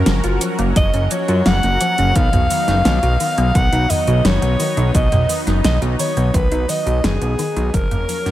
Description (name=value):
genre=synthwave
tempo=86 BPM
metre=4/4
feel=straight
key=unclear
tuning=A4 = 440 Hz
part: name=breathy alto saxophone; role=melody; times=0.0-8.3 s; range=G#4 to F#5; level=-20 LUFS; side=right 1 dB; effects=tape echo
part: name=analog string pad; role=sustained chords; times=0.0-8.3 s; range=F#3 to E#5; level=-25 LUFS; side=left 3 dB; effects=ensemble chorus, sidechain pumping
part: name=thumb-piano-like synth pluck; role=arpeggios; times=0.0-8.3 s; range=D#3 to F#4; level=-24 LUFS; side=left 2 dB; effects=chorus, cassette tape, tape echo
part: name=fat analog bass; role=bass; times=0.0-8.3 s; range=F#1 to F#2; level=-17 LUFS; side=equal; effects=none
part: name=pop drum kit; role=drums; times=0.1-8.3 s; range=cabasa, hi-hat, snare drum, toms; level=-22 LUFS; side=equal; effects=overdrive, gated reverb
part: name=electronic kick drum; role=drums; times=0.8-7.9 s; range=none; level=-17 LUFS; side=equal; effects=overdrive
room=little or no reverb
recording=none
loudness=-14 LUFS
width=side -14 dB against mid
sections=0.0-8.3 A section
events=fade-out 5.9-8.3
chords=0.0 F#maj7; 2.2 B; 7.7 F#maj7